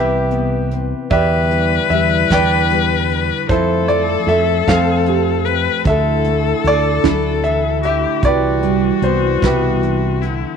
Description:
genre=acoustic folk-pop ballad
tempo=50 BPM (dotted quarters)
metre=6/8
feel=straight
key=unclear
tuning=A4 = 438 Hz
part: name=clear concert grand piano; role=melody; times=0.0-10.6 s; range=E4 to G5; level=-19 LUFS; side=right 1 dB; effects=none
part: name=clear viola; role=second line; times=0.0-10.6 s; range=E4 to B4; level=-20 LUFS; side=left 12 dB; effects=none
part: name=nylon-string guitar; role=accompaniment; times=0.0-10.6 s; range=E2 to E4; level=-25 LUFS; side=left 11 dB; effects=none
part: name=dark analog pad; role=sustained chords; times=0.0-10.6 s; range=C3 to E5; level=-26 LUFS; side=right 4 dB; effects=chorus
part: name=mellow fretless electric bass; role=bass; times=0.0-10.4 s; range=C2 to F2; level=-20 LUFS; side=right 2 dB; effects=none
part: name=soft brush drum kit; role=drums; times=0.3-10.4 s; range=hi-hat, kick drum, snare drum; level=-21 LUFS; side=right 2 dB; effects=none
part: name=felt-muted upright piano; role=arpeggios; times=1.1-10.2 s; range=G3 to D5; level=-22 LUFS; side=right 14 dB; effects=none
room=light reverb, small room ambience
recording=1960s-style stereo with parts hard left and right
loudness=-13 LUFS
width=side -6 dB against mid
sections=0.0-10.6 A section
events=none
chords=0.0 Cmaj7; 1.1 Em7; 3.5 Fmaj7; 5.9 Dsus2; 8.2 Cmaj7

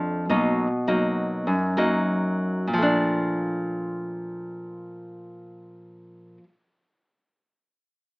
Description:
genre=bossa nova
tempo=free time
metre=none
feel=none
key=Bb major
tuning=A4 = 440 Hz
part: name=nylon-string guitar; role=accompaniment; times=0.0-6.5 s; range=F2 to D#4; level=-23 LUFS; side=equal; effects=none
room=moderate studio reverb, RT60 0.7 s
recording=AM radio sound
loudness=-22 LUFS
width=side -29 dB against mid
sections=0.0-2.7 A section; 2.7-7.9 B section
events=slowing down 0.0-2.7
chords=0.3 Bmaj7; 2.7 Bbmaj7

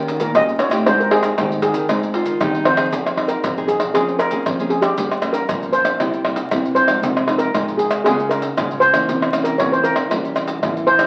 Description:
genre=samba and choro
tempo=117 BPM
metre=4/4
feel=straight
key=F minor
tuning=A4 = 441 Hz
part: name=steel pan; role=melody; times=0.0-11.1 s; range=G4 to Eb5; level=-21 LUFS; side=equal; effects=none
part: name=nylon-string guitar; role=accompaniment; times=0.0-11.1 s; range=G2 to Ab4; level=-27 LUFS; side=equal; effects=none
part: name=nylon-string guitar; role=bass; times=0.0-11.1 s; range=F2 to Ab3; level=-28 LUFS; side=equal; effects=none
part: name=maracas, pandeiro, surdo and tamborim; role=percussion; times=0.1-11.1 s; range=none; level=-24 LUFS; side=equal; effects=none
part: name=mellow clarinet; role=second line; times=2.1-2.9 s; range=Eb4 to F4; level=-26 LUFS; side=equal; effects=none
room=moderate club reverb, RT60 0.7 s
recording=very old 78 rpm record, vinyl crackle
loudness=-18 LUFS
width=mono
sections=0.0-2.9 A section; 2.9-11.1 B section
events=none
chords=0.0 Eb7; 0.9 Abmaj7; 2.9 Fm7; 3.9 Bbm7/F; 5.0 Gm7b5; 6.0 C7; 7.0 Fm7/C; 8.1 Bbm7/Db; 9.1 C7b9

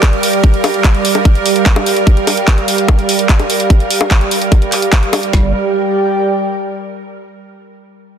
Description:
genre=psychedelic trance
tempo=147 BPM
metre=4/4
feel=straight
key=G minor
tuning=A4 = 439 Hz
part: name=evolving wavetable pad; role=sustained chords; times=0.0-5.4 s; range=G3 to Bb4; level=-19 LUFS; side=right 4 dB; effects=ensemble chorus, built-in reverb, sidechain pumping
part: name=drum and bass drum kit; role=drums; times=0.0-5.4 s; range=kick drum, snare drum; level=-10 LUFS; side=equal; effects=none
part: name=drum and bass drum kit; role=drums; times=0.0-5.3 s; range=bongos, handclaps, hi-hat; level=-16 LUFS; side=left 1 dB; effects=none
part: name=airy breathy pad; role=texture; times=0.0-6.9 s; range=G4 to G5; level=-17 LUFS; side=right 2 dB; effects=chorus, sidechain pumping
part: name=liquid acid bass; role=riff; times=5.3-5.5 s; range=G3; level=-23 LUFS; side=moving between left 6 dB and right 5 dB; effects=chorus, auto-pan, cassette tape, sidechain pumping, digital delay
part: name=round analog bass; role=bass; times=5.3-5.5 s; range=G1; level=-17 LUFS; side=equal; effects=none
room=moderate lush hall reverb, RT60 2.2 s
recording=dense, heavily limited modern master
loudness=-10 LUFS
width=side -8 dB against mid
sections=0.0-5.3 A section; 5.3-7.0 B section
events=none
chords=0.0 G5

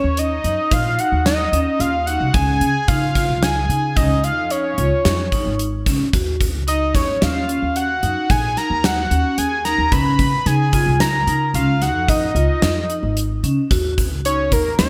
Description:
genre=progressive instrumental, band music in an uneven meter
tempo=111 BPM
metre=7/4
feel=straight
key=Eb minor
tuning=A4 = 440 Hz
part: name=fat analog lead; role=melody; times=0.0-14.9 s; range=Bb4 to Cb6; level=-22 LUFS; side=equal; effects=phaser, delay
part: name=vibraphone with hard mallets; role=arpeggios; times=0.0-14.9 s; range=Db4 to Gb4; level=-27 LUFS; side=equal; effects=none
part: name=upright bass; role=bass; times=0.0-14.9 s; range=Ab1 to Db3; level=-24 LUFS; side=equal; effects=none
part: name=gated 80s drum kit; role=drums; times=0.2-14.9 s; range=hi-hat, kick drum, snare drum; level=-23 LUFS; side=equal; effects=none
room=moderate plate reverb, RT60 1.9 s, small room ambience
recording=bright 1980s-style digital production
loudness=-18 LUFS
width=mono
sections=0.0-14.9 A section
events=none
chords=0.0 Ebm7; 2.3 Dbadd9; 6.1 Ebm7; 9.9 Dbadd9; 13.7 Ebm7

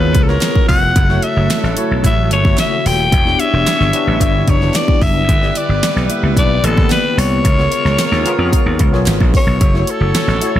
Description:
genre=polished 1980s jazz-funk pop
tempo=111 BPM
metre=4/4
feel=straight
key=unclear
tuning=A4 = 442 Hz
part: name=growling alto saxophone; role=melody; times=0.0-10.6 s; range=A4 to G5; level=-18 LUFS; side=left 2 dB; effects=none
part: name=warm horn section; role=second line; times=0.0-10.6 s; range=A3 to C#5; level=-28 LUFS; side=right 6 dB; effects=none
part: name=overdriven tine electric piano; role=accompaniment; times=0.0-10.6 s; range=A3 to E5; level=-20 LUFS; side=left 3 dB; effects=medium tremolo, lush chorus
part: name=phased string machine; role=sustained chords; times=0.0-9.6 s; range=C#3 to E#4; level=-26 LUFS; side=right 1 dB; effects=none
part: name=slap bass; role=bass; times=0.0-10.6 s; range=Eb1 to E#2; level=-16 LUFS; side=equal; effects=none
part: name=pop drum kit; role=drums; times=0.1-10.5 s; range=hi-hat, kick drum, snare drum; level=-15 LUFS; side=equal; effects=gated reverb
part: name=group handclap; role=percussion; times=0.4-10.3 s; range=none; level=-30 LUFS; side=right 5 dB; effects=none
room=digital ambience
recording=none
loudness=-11 LUFS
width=side -12 dB against mid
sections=0.0-9.6 A section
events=none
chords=0.0 C#7; 1.0 F#m7; 3.1 Em7; 5.3 G6; 7.4 C#7; 9.6 F#m7

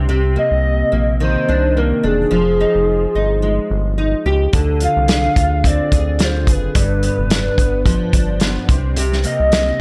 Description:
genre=indie pop, bedroom pop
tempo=108 BPM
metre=4/4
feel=swing 55% on 16ths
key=C minor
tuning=A4 = 442 Hz
part: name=nylon-string guitar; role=accompaniment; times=0.0-9.8 s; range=G2 to Ab4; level=-22 LUFS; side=equal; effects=analog chorus, vibrato effect
part: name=round analog bass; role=bass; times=0.0-9.7 s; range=E1 to D2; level=-21 LUFS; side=equal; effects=none
part: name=hollow clarinet-like synth lead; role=melody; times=0.4-9.8 s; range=Ab4 to F5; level=-21 LUFS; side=equal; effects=lush chorus
part: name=loose indie drum kit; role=drums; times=4.5-9.7 s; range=hi-hat, kick drum, snare drum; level=-19 LUFS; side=equal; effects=none
room=light reverb, small room ambience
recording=none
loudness=-16 LUFS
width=mono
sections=0.0-9.8 A section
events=none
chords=0.0 Cm9; 2.3 Fm9; 4.5 Dm7b5; 6.8 G7; 8.7 Cm9

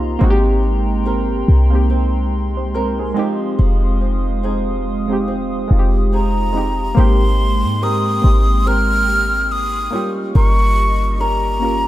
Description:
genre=R&B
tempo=71 BPM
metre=4/4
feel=swing 58% on 16ths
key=unclear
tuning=A4 = 440 Hz
part: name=warm analog keys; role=accompaniment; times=0.0-11.9 s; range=Ab3 to F5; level=-22 LUFS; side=right 1 dB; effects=chorus
part: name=hollow soft pad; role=sustained chords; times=0.0-11.9 s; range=Ab3 to Eb6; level=-26 LUFS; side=right 1 dB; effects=chorus
part: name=flamenco guitar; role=arpeggios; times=0.0-11.9 s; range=C3 to Bb4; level=-26 LUFS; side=equal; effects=ping-pong delay
part: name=clean 808-style bass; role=bass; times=0.0-11.9 s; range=F1 to Ab2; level=-16 LUFS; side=equal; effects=none
part: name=breathy hollow jazz flute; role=melody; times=6.1-11.9 s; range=Bb5 to F6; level=-19 LUFS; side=equal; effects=none
room=light reverb, small room ambience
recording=none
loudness=-14 LUFS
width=side -14 dB against mid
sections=0.0-7.0 A section; 7.0-11.9 B section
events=synth keys fill 0.0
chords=0.2 Abmaj9; 3.2 Fm7; 7.0 Abmaj9; 9.9 Eb7/G

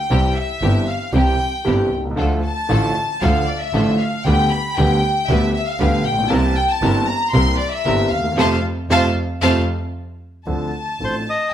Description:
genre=tango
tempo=116 BPM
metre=4/4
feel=rubato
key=F major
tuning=A4 = 438 Hz
part: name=rich studio violin section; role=second line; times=0.0-11.5 s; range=C5 to C6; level=-21 LUFS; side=left 2 dB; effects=none
part: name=warm upright piano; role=accompaniment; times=0.1-11.2 s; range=G1 to A4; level=-21 LUFS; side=right 1 dB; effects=none
part: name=rich studio string section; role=stabs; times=0.1-9.6 s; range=C4 to B4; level=-26 LUFS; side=right 3 dB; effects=none
part: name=rich double bass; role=bass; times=0.1-11.2 s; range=G1 to F2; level=-20 LUFS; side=equal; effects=none
part: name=bandoneon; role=melody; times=11.0-11.5 s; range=C5 to Eb5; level=-20 LUFS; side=left 1 dB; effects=none
room=moderate large studio reverb, RT60 1.1 s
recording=none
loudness=-16 LUFS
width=side -10 dB against mid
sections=0.0-10.5 A section; 10.5-11.5 B section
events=violin section solo 0.0-10.5; band accent 8.4-10.5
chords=0.1 C; 2.2 Dm; 4.3 G/D; 6.3 C7; 8.4 F; 10.5 Dm7

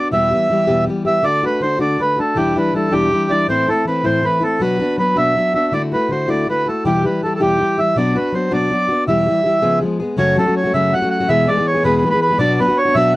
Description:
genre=celtic folk, Celtic jig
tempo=107 BPM (dotted quarters)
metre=6/8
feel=straight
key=E minor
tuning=A4 = 440 Hz
part: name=accordion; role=melody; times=0.0-13.1 s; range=G4 to F#5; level=-16 LUFS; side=right 1 dB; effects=none
part: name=fingerpicked plugged-in steel-string acoustic guitar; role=accompaniment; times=0.0-13.2 s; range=E2 to G#4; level=-18 LUFS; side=left 2 dB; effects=none
room=light reverb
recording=dry, close 1970s-style studio recording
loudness=-14 LUFS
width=side -18 dB against mid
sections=0.0-1.2 A section; 1.2-10.2 A section; 10.2-13.2 B section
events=none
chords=0.1 Em; 1.2 D; 2.4 Em7; 3.5 Am; 4.6 Bm; 5.7 Dadd9; 6.8 Em; 8.0 Bm; 9.1 Em; 9.6 C#7; 10.2 F#m; 11.3 E; 12.4 Bm

